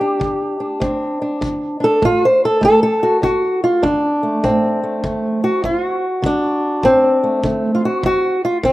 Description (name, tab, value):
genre	acoustic country blues, solo or duo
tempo	100 BPM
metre	4/4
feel	swing 66% on 8ths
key	D mixolydian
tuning	A4 = 440 Hz
part	fingerpicked old ladder-braced acoustic guitar	melody	0.0-8.7 s	D2 to C5	-14 LUFS	equal	slapback echo
part	kick drum	drums	0.2-8.7 s	none	-28 LUFS	equal	none
room	little or no reverb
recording	lossy compression artefacts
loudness	-14 LUFS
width	side -17 dB against mid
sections	0.0-3.2 A section; 3.2-8.7 B section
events	steel-string acoustic guitar solo 0.0-3.2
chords	0.0 G5; 0.8 Amadd11/D (rootless); 2.0 N.C.; 3.2 D7